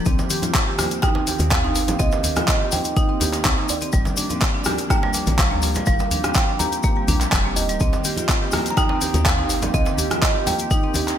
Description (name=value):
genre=afro house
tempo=124 BPM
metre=4/4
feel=straight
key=C minor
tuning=A4 = 438 Hz
part: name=warm analog pad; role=sustained chords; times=0.0-11.2 s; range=Eb3 to G4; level=-30 LUFS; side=right 1 dB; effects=chorus, sidechain pumping
part: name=marimba with hard mallets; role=arpeggios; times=0.0-11.1 s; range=G3 to C5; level=-27 LUFS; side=equal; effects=sidechain pumping, digital delay
part: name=woody FM bass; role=bass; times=0.1-9.8 s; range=D1 to Eb2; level=-23 LUFS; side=equal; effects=tube saturation, sidechain pumping
part: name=deep house drum kit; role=drums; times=0.1-11.2 s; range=handclaps, hi-hat, rim click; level=-24 LUFS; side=equal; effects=gated reverb
part: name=electronic kick drum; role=drums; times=0.1-10.8 s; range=none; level=-21 LUFS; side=equal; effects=none
part: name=tube shaker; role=percussion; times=0.1-11.2 s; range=none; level=-31 LUFS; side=left 7 dB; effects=none
part: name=congas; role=percussion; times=0.2-11.0 s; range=none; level=-30 LUFS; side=left 1 dB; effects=none
part: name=djembe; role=percussion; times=0.2-11.2 s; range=none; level=-31 LUFS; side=right 2 dB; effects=none
part: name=kalimba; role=melody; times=1.0-11.2 s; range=D5 to Bb5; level=-27 LUFS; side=right 3 dB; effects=digital delay
room=light reverb, small room ambience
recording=bright 1980s-style digital production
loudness=-18 LUFS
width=side -10 dB against mid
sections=0.0-11.2 A section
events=none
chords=0.1 Cm7; 3.9 Gm7; 7.8 Cm7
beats=| 0.06 0.55 1.03 1.51 | 2.00 2.48 2.97 3.45 | 3.93 4.42 4.90 5.38 | 5.87 6.35 6.84 7.32 | 7.80 8.29 8.77 9.26 | 9.74 10.22 10.71